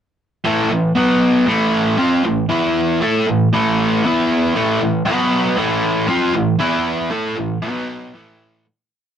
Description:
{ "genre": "rock", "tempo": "117 BPM", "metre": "4/4", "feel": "straight", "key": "A dorian", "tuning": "A4 = 441 Hz", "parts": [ { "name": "biting overdriven guitar", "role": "solo", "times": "0.4-8.6 s", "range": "A2 to A4", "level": "-15 LUFS", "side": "equal", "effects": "none" } ], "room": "moderate small room reverb, RT60 0.5 s", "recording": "rough rehearsal-room recording, tube saturation", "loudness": "-15 LUFS", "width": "side -9 dB against mid", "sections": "0.5-8.6 riff", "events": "fade-out 6.6-8.6", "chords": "0.5 A5; 1.0 B5; 1.5 Am; 2.5 E5; 3.0 A5; 4.0 E5; 4.6 A5; 5.1 B5; 5.6 Am; 6.6 E5; 7.1 A5; 7.6 B5; 8.1 A5", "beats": "| 0.47 0.98 1.49 2.00 | 2.51 3.02 3.53 4.04 | 4.56 5.07 5.58 6.09 | 6.60 7.11 7.62 8.13" }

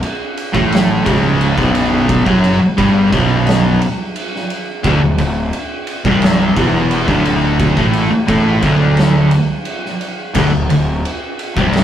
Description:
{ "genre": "stoner and doom metal", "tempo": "87 BPM", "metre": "4/4", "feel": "straight", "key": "unclear", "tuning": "A4 = 439 Hz", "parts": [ { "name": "oversized low-tuned drum kit", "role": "drums", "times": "0.0-11.8 s", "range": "crash cymbal, kick drum, ride cymbal, snare drum", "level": "-18 LUFS", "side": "right 1 dB", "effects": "none" }, { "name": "distorted electric guitar", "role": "riff", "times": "0.5-11.8 s", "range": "B1 to A3", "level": "-17 LUFS", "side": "equal", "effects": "distortion" }, { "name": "thick fuzz guitar", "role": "riff", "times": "0.5-11.8 s", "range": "B1 to A3", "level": "-17 LUFS", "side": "left 3 dB", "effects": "distortion" }, { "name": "thick fuzz guitar", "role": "riff", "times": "0.5-11.8 s", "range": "B1 to A3", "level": "-18 LUFS", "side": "right 4 dB", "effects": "distortion" }, { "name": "fuzz fingered electric bass", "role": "bass", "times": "0.5-11.8 s", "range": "B0 to A1", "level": "-20 LUFS", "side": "equal", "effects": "overdrive" } ], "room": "wet small room reverb, RT60 0.5 s", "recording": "rough rehearsal-room recording, tube saturation", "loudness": "-12 LUFS", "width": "side -10 dB against mid", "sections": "0.0-11.8 A section", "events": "none", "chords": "0.0 B5; 4.8 D5", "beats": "0.03 0.71 1.40 | 2.09 2.78 3.47 4.15 | 4.84 5.53 6.22 6.91 | 7.60 8.29 8.98 9.67 | 10.36 11.05 11.74" }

